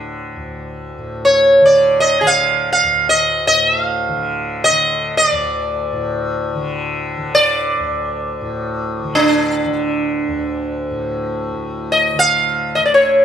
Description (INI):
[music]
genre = indian classical, Hindustani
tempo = free time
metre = none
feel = none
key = D raga todi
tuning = A4 = 442 Hz
[part]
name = sitar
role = melody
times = 0.0-13.2 s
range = D4 to F5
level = -14 LUFS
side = equal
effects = none
[part]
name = tanpura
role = drone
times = 0.0-13.2 s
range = D2 to D3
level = -24 LUFS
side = left 1 dB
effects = none
[sound]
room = light reverb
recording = none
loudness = -14 LUFS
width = side -9 dB against mid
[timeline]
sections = 0.0-11.5 A section; 11.5-13.2 A section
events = none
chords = none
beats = free time